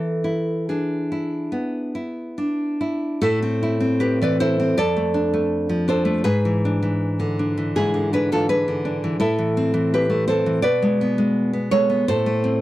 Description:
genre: romantic piece for solo classical guitar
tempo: 81 BPM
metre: 4/4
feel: uneven beats, rubato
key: A minor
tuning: A4 = 441 Hz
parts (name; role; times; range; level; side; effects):
- nylon-string guitar; solo; 0.0-12.6 s; F2 to D5; -19 LUFS; equal; none
room: light reverb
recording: dry, close 1970s-style studio recording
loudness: -19 LUFS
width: side -15 dB against mid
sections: 0.0-3.2 A section; 3.2-12.6 B section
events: none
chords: 0.0 E; 3.2 Am; 4.8 Dm/F; 6.3 E7/G#; 9.2 Am; 10.6 G#dim/B; 12.1 Am

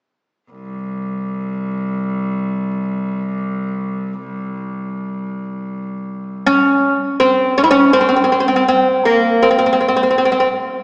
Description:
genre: Arabic maqam ensemble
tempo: 81 BPM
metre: 4/4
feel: straight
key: unclear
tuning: A4 = 435 Hz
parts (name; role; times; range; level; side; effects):
- rich cello; drone; 0.5-6.5 s; C2; -22 LUFS; equal; none
- oud; melody; 6.5-10.5 s; Bb3 to E4; -11 LUFS; equal; none
room: wet concert hall reverb, RT60 2.4 s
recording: heard from further back in the room, small speaker sound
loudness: -13 LUFS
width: side -35 dB against mid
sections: 0.5-6.5 A section; 6.5-10.8 B section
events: none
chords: none

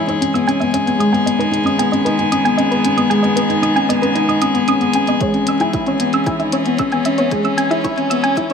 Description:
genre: piano and strings electronica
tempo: 114 BPM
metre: 4/4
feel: straight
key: C# minor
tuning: A4 = 438 Hz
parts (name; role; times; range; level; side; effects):
- warm string quartet; sustained chords; 0.0-8.5 s; D#3 to G#4; -18 LUFS; left 1 dB; sidechain pumping
- soft round pluck; arpeggios; 0.0-8.5 s; B4 to E6; -21 LUFS; right 2 dB; chorus, vintage 12-bit sampler grit, sidechain pumping, digital delay
- warm sub bass; bass; 0.0-8.5 s; none; barely audible; none; none
- felt-muted upright piano; riff; 0.1-8.5 s; G#3 to E4; -17 LUFS; left 2 dB; digital delay
- electronic hi-hat; drums; 0.1-8.5 s; none; -29 LUFS; left 2 dB; high-pass filter on hats
- electronic kick drum; drums; 5.2-8.5 s; none; -26 LUFS; right 1 dB; none
room: moderate echo chamber reverb, RT60 1.7 s, small room ambience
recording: high-pass filter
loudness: -14 LUFS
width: side -6 dB against mid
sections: 0.0-8.5 A section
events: build-up 0.0-8.5; filter sweep on synth arpeggio sound 0.0-8.5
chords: 0.0 G#m/C#

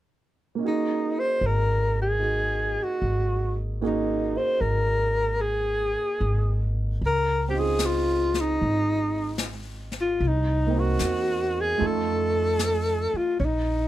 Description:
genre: jazz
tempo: 75 BPM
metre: 4/4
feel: swing 67% on 8ths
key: unclear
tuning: A4 = 440 Hz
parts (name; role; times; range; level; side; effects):
- warm grand piano; accompaniment; 0.6-13.4 s; A3 to Bb4; -31 LUFS; right 6 dB; none
- breathy alto saxophone; melody; 0.7-13.9 s; C#4 to C5; -25 LUFS; equal; none
- upright bass; bass; 1.4-13.9 s; Ab1 to F2; -27 LUFS; equal; none
- jazz brush drum kit; drums; 7.0-13.9 s; brushed snare drum, hi-hat, snare drum; -34 LUFS; left 4 dB; none
room: little or no reverb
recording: none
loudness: -22 LUFS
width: side -14 dB against mid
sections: 0.6-7.0 A section; 7.0-13.9 B section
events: none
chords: 0.6 Ab7sus4; 7.0 Dbmaj9; 10.2 Cm7b5; 11.8 Faug7

